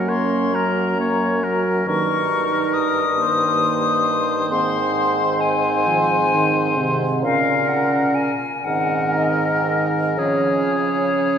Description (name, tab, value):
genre	classical, slow romantic movement for wind quintet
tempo	38-46 BPM (dotted quarters)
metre	6/8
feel	rubato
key	unclear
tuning	A4 = 440 Hz
part	bright silver concert flute	melody	0.0-11.4 s	Db5 to Eb6	-22 LUFS	left 5 dB	none
part	bright oboe	second line	0.0-11.4 s	Ab4 to Db5	-24 LUFS	left 2 dB	none
part	mellow French horn	accompaniment	0.0-11.4 s	C3 to Bb3	-25 LUFS	right 1 dB	none
part	mellow clarinet	accompaniment	0.0-11.4 s	Bb3 to Eb4	-27 LUFS	right 5 dB	none
part	mellow bassoon	bass	0.0-11.4 s	Gb2 to Db3	-23 LUFS	right 2 dB	none
room	wet church reverb, RT60 3.6 s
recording	recorded in a church or concert hall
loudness	-17 LUFS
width	side -8 dB against mid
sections	0.0-11.4 A section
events	none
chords	0.0 Gb; 1.9 Eb7/G; 4.5 Ab; 7.2 Bbm7; 8.7 Ab; 10.2 Db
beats	0.53 | 1.86 3.18 | 4.51 5.86 | 7.24 8.66 | 10.18